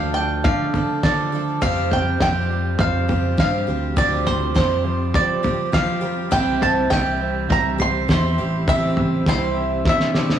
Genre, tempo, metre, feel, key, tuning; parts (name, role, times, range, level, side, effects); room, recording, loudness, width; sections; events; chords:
indie folk with a building arrangement; 102 BPM; 4/4; straight; F major; A4 = 440 Hz
bluegrass banjo; melody; 0.0-10.4 s; C5 to C6; -24 LUFS; right 1 dB
glockenspiel with hard plastic mallets; second line; 0.0-10.4 s; C6 to C7; -28 LUFS; right 4 dB
clear baby grand piano; accompaniment; 0.0-10.4 s; F1 to G5; -28 LUFS; right 7 dB
picked twelve-string acoustic guitar; accompaniment; 0.0-10.4 s; C3 to A4; -28 LUFS; left 3 dB
fingered electric bass; bass; 0.0-10.4 s; A1 to F3; -24 LUFS; equal
cloth-damped thuddy drum kit; drums; 0.4-10.4 s; kick drum, snare drum, toms; -22 LUFS; equal
mellow tonewheel organ; sustained chords; 1.6-10.4 s; E3 to G4; -34 LUFS; equal
moderate echo chamber reverb, RT60 1.4 s; blown-out, overdriven recording, overdrive, small room ambience; -17 LUFS; side -9 dB against mid
0.0-10.4 A section
drum fill 9.9-10.4
0.0 Dm; 1.6 Fsus2; 6.3 C